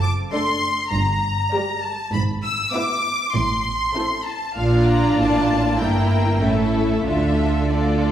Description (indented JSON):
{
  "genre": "quick classical-period movement for string orchestra",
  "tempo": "99 BPM",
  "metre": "4/4",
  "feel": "rubato",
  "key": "D minor",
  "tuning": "A4 = 440 Hz",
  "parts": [
    { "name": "clear symphonic violin section", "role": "melody", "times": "0.0-8.1 s", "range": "D5 to E6", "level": "-23 LUFS", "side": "left 2 dB", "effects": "none" },
    { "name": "clear symphonic cello section", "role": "bass", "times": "0.0-8.1 s", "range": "F#2 to D3", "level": "-24 LUFS", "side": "right 2 dB", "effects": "none" },
    { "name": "clear symphonic double bass section", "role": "bass", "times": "0.0-8.1 s", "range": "F#1 to D2", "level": "-24 LUFS", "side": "right 1 dB", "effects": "none" },
    { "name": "warm symphonic violin section", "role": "second line", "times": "0.3-8.1 s", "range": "E4 to E5", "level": "-26 LUFS", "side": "left 2 dB", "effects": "none" },
    { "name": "clear symphonic viola section", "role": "accompaniment", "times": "0.3-8.1 s", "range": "G3 to G4", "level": "-23 LUFS", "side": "right 1 dB", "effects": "none" }
  ],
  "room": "wet recital hall reverb, RT60 1.6 s",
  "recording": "heard from further back in the room",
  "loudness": "-18 LUFS",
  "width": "side -10 dB against mid",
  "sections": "0.0-8.1 A section",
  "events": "none",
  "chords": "0.0 D7/F#; 0.9 Gm; 2.1 E7/G#; 3.4 Am; 4.6 Bb; 5.8 Edim/G; 6.4 A; 7.1 Dm"
}